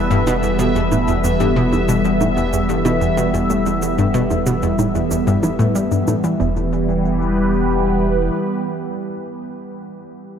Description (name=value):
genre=ambient, sequencer-driven space music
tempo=93 BPM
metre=4/4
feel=straight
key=E minor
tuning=A4 = 440 Hz
part: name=phased analog pad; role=sustained chords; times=0.0-9.7 s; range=E3 to E5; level=-19 LUFS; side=equal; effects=phaser, chorus
part: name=analog pluck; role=riff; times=0.0-6.7 s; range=E2 to G3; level=-20 LUFS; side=equal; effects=chorus, ping-pong delay
part: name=round analog bass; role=bass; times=0.0-8.3 s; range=E1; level=-25 LUFS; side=equal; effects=none
part: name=bubbling stepped-filter texture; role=texture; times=0.0-6.4 s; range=B3 to E5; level=-27 LUFS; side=left 2 dB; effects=chorus, built-in reverb
part: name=shaker and bongos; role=percussion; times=0.1-6.4 s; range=none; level=-29 LUFS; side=right 1 dB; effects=overdrive, ping-pong delay
room=wet cathedral reverb, RT60 6.7 s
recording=in a vast, echoing space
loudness=-15 LUFS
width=side -8 dB against mid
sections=0.0-6.4 A section; 6.4-9.0 B section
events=none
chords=0.0 Em